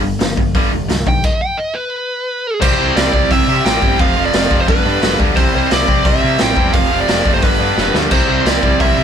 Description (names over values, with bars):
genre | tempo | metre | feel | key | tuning
punk rock | 174 BPM | 4/4 | straight | C major | A4 = 442 Hz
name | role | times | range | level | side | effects
distorted electric guitar | riff | 0.0-9.0 s | F2 to C4 | -20 LUFS | left 10 dB | overdrive
distorted electric guitar | riff | 0.0-9.0 s | F2 to G4 | -18 LUFS | right 8 dB | distortion
overdriven picked electric bass | bass | 0.0-9.0 s | F1 to C3 | -22 LUFS | equal | none
raw garage drum kit | drums | 0.2-8.9 s | crash cymbal, hi-hat, kick drum, snare drum | -16 LUFS | equal | none
bluesy overdriven lead guitar | melody | 1.1-9.0 s | B4 to G5 | -18 LUFS | right 1 dB | distortion
room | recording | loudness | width
light reverb | band playing live in one room | -12 LUFS | side -8 dB against mid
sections
0.0-2.6 A section; 2.6-9.0 B section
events
lead electric guitar solo 0.0-2.6; stop 1.2-2.6; drum fill 7.8-8.1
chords
0.0 G; 2.6 C; 4.0 F; 4.7 G; 5.4 C; 6.7 F; 7.4 G; 8.1 C